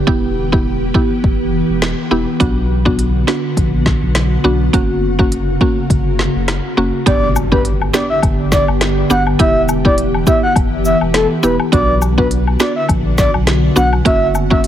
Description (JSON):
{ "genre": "dancehall", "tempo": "103 BPM", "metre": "4/4", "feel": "swing 56% on 16ths", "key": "B harmonic minor", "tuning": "A4 = 435 Hz", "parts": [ { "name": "mallet-like synth pluck", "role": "accompaniment", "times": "0.0-14.7 s", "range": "A#3 to G4", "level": "-17 LUFS", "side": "right 2 dB", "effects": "chorus" }, { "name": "ethereal airy pad", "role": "sustained chords", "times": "0.0-14.7 s", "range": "C#3 to G4", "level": "-19 LUFS", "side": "equal", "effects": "ensemble chorus, built-in reverb" }, { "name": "warm sub bass", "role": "bass", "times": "0.0-14.7 s", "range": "E1 to B1", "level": "-18 LUFS", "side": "equal", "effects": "none" }, { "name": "afro-pop drum kit", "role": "drums", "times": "0.1-14.7 s", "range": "hi-hat, kick drum, rim click, snare drum", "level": "-17 LUFS", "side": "equal", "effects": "none" }, { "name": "breathy flute-like synth lead", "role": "melody", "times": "7.1-14.6 s", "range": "A4 to F#5", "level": "-17 LUFS", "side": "equal", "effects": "chorus, ping-pong delay" }, { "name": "impact", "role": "sound effects", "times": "7.1-9.4 s", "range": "none", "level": "-26 LUFS", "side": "equal", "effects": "none" }, { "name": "cabasa and woodblock", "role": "percussion", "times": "7.4-14.5 s", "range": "none", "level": "-23 LUFS", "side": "left 7 dB", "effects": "none" } ], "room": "light reverb, digital ambience", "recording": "heavily compressed radio sound", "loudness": "-12 LUFS", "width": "side -11 dB against mid", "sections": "0.0-7.1 A section; 7.1-14.7 B section", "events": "impact 7.1-9.4", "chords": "0.1 Em; 2.4 Bm; 4.7 F#; 7.1 G; 9.4 Em; 11.7 Bm; 14.1 F#" }